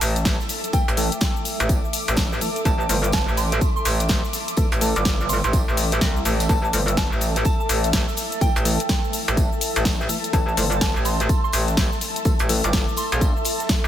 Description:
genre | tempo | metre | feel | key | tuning
bass house | 125 BPM | 4/4 | swing 62% on 16ths | A minor | A4 = 443 Hz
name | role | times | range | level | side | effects
metallic wobble bass | bass | 0.0-13.9 s | G1 to C2 | -22 LUFS | equal | chorus, overdrive, sidechain pumping
crisp fusion drum kit | drums | 0.0-13.9 s | hi-hat, snare drum, tambourine | -36 LUFS | right 3 dB | high-pass filter on hats, small room ambience, high-pass filter on snare, high-pass filter on perc, high-pass filter on room
house drum kit | drums | 0.0-13.9 s | hi-hat, shaker, snare drum | -26 LUFS | left 2 dB | small room ambience
granular cloud pad | texture | 0.0-13.9 s | A4 to D6 | -29 LUFS | equal | built-in reverb, lush chorus, sidechain pumping
electronic kick drum | drums | 0.3-13.8 s | none | -22 LUFS | equal | small room ambience
soft synth bell | melody | 0.7-13.2 s | G5 to D6 | -30 LUFS | right 2 dB | chorus, phaser, ping-pong delay
percussive organ stab | stabs | 0.7-12.6 s | E3 to C5 | -31 LUFS | left 1 dB | chorus, sidechain pumping, ping-pong delay
room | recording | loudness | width
light reverb, small room reverb | none | -18 LUFS | side -11 dB against mid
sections
0.0-13.9 A section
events
none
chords
0.0 A5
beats
0.25 | 0.73 1.21 1.69 2.17 | 2.65 3.13 3.61 4.09 | 4.57 5.05 5.53 6.01 | 6.49 6.97 7.45 7.93 | 8.41 8.89 9.37 9.85 | 10.33 10.81 11.29 11.77 | 12.25 12.73 13.21 13.69

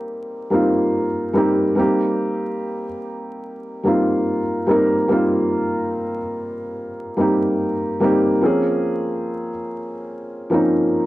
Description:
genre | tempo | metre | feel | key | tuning
hip hop | 72 BPM | 4/4 | swing 56% on 16ths | C phrygian | A4 = 438 Hz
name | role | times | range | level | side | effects
felt-muted upright piano | solo | 0.0-11.1 s | F3 to Bb4 | -18 LUFS | equal | cassette tape
room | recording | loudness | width
moderate spring reverb, RT60 1.5 s, studio ambience | home recording on cassette, vinyl crackle | -17 LUFS | side -17 dB against mid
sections
0.0-1.8 A section; 1.8-11.1 A section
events
none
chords
0.0 Cm7; 8.4 Bbm7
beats
0.10 0.94 | 1.77 2.60 3.44 4.27 | 5.10 5.94 6.77 7.60 | 8.44 9.27 10.10 10.94

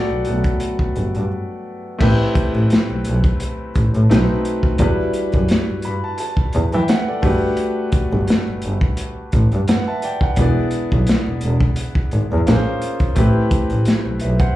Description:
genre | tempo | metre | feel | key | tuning
R&B, neo-soul | 86 BPM | 4/4 | swing 54% on 16ths | A dorian | A4 = 440 Hz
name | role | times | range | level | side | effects
clear grand piano | accompaniment | 0.0-14.6 s | F#3 to B5 | -22 LUFS | left 1 dB | slapback echo
clear double bass | bass | 0.1-14.3 s | E1 to E3 | -19 LUFS | equal | none
crunchy breakbeat drum kit | drums | 0.2-14.5 s | crash cymbal, hi-hat, kick drum, snare drum | -19 LUFS | equal | none
room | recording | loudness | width
little or no reverb | live gig heard through the venue's PA, club reverb | -16 LUFS | side -15 dB against mid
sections
0.0-2.0 A section; 2.0-14.6 B section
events
grand piano solo 0.0-2.0; break 1.3-2.0; grand piano fill 5.5-7.6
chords
0.0 Gmaj9; 2.0 Am9; 4.1 B7b9; 4.8 Em9; 7.2 Gmaj9; 10.4 E7; 12.5 Bbm9; 13.2 Am9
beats
0.61 1.30 | 2.00 2.70 3.40 4.10 | 4.79 5.49 6.19 6.89 | 7.58 8.28 8.98 9.68 | 10.38 11.07 11.77 12.47 | 13.17 13.86

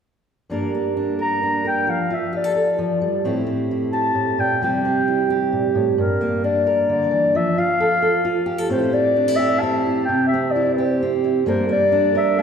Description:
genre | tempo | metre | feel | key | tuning
folk | 131 BPM | 3/4 | straight | G dorian | A4 = 439 Hz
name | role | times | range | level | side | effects
fingerpicked steel-string acoustic guitar | accompaniment | 0.5-12.4 s | G2 to Bb4 | -20 LUFS | right 2 dB | none
dark clarinet | melody | 1.2-12.4 s | Bb4 to Bb5 | -20 LUFS | left 2 dB | none
room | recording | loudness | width
wet concert hall reverb, RT60 2.0 s | recorded in a church or concert hall | -17 LUFS | side -7 dB against mid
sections
0.5-6.0 A section; 6.0-12.4 B section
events
none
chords
0.5 Gm; 1.9 Dm/F; 3.2 Am7; 6.0 Gm; 7.3 Dm/F; 8.7 Am7; 10.1 C; 11.5 Gm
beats
| 0.49 0.95 1.40 | 1.86 2.32 2.77 | 3.23 3.68 4.14 | 4.60 5.05 5.51 | 5.96 6.42 6.88 | 7.33 7.79 8.25 | 8.71 9.16 9.62 | 10.08 10.54 11.00 | 11.46 11.92 12.38

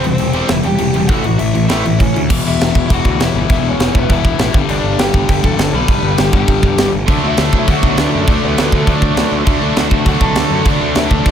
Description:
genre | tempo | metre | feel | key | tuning
punk rock | 201 BPM | 4/4 | straight | D major | A4 = 440 Hz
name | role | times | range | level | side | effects
lead guitar through a small cranked amp | melody | 0.0-11.3 s | A3 to B5 | -20 LUFS | right 1 dB | overdrive
cranked stack guitar | riff | 0.0-11.3 s | E2 to D4 | -18 LUFS | left 10 dB | overdrive
overdriven electric guitar | riff | 0.0-2.3, 7.1-11.3 s | A2 to D4 | -19 LUFS | right 13 dB | none
fuzz picked electric bass | bass | 0.0-11.3 s | E1 to F#2 | -19 LUFS | right 1 dB | overdrive
tight metal drum kit | drums | 0.0-11.3 s | crash cymbal, kick drum, snare drum | -16 LUFS | right 1 dB | none
room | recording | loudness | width
light reverb | none | -11 LUFS | side -9 dB against mid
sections
0.0-2.3 A section; 2.3-11.3 B section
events
half time 0.0-2.3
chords
0.0 C/E; 1.1 A; 2.3 E5; 4.5 G; 7.1 D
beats
0.20 0.50 0.80 | 1.10 1.40 1.70 2.00 | 2.30 2.60 2.90 3.20 | 3.50 3.80 4.10 4.40 | 4.70 5.00 5.29 5.59 | 5.89 6.19 6.49 6.79 | 7.08 7.38 7.68 7.98 | 8.28 8.58 8.87 9.17 | 9.47 9.77 10.07 10.37 | 10.66 10.96 11.26

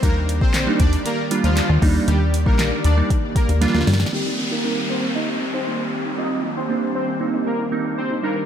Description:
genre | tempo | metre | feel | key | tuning
dance-pop | 117 BPM | 4/4 | straight | unclear | A4 = 440 Hz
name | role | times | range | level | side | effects
soft supersaw | melody | 0.0-8.3 s | F3 to Eb5 | -26 LUFS | left 1 dB | sidechain pumping, low-pass filter, ping-pong delay
glassy digital keys | accompaniment | 0.0-8.5 s | G3 to F4 | -24 LUFS | right 4 dB | chorus, sidechain pumping, low-pass filter
airy breathy pad | sustained chords | 0.0-8.5 s | Eb3 to D5 | -28 LUFS | equal | chorus, sidechain pumping, low-pass filter
plucky analog bass | bass | 0.0-4.0 s | Bb1 to G2 | -18 LUFS | left 1 dB | sidechain pumping
smooth R&B drum kit | drums | 0.0-4.2 s | handclaps, hi-hat, kick drum, snare drum | -21 LUFS | left 1 dB | none
wide unison pluck | arpeggios | 4.1-8.5 s | C4 to C5 | -32 LUFS | left 1 dB | none
downlifter | sound effects | 4.1-8.2 s | none | -28 LUFS | left 1 dB | none
room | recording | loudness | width
moderate church reverb, RT60 3.0 s | dreamy mix soaked in reverb | -18 LUFS | side -9 dB against mid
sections
0.0-4.1 A section; 4.1-8.5 B section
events
drop 0.0-4.1; drum fill 3.6-4.1; filter sweep 4.1-8.5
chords
0.0 Ebmaj7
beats
| 0.03 0.54 1.05 1.56 | 2.08 2.59 3.10 3.62 | 4.13 4.64 5.16 5.67 | 6.18 6.69 7.21 7.72 | 8.23

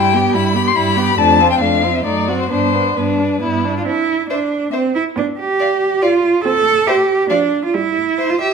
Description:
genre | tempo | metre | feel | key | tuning
quick classical-period movement for string quartet | 139 BPM | 3/4 | rubato | C major | A4 = 437 Hz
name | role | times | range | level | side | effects
warm violin | melody | 0.0-8.3 s | B4 to C6 | -17 LUFS | left 8 dB | none
rich violin | second line | 0.0-8.5 s | B3 to E5 | -21 LUFS | left 3 dB | none
dark viola | accompaniment | 0.0-8.1 s | F3 to D4 | -22 LUFS | right 4 dB | none
warm cello | bass | 0.0-8.5 s | F2 to A4 | -16 LUFS | right 5 dB | none
room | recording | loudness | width
wet stone room reverb, RT60 1.1 s | none | -13 LUFS | side -6 dB against mid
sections
0.0-3.9 A section; 3.9-8.5 B section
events
none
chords
0.0 Em/G; 1.2 Dm7/F; 2.0 F#dim7; 2.5 G; 3.9 C; 5.2 G7/B; 6.4 C5; 7.3 Dm/F; 7.7 C/G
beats
0.34 0.76 | 1.18 1.61 2.05 | 2.50 2.96 3.42 | 3.87 4.30 4.73 | 5.16 5.59 6.02 | 6.45 6.87 7.30 | 7.74 8.18

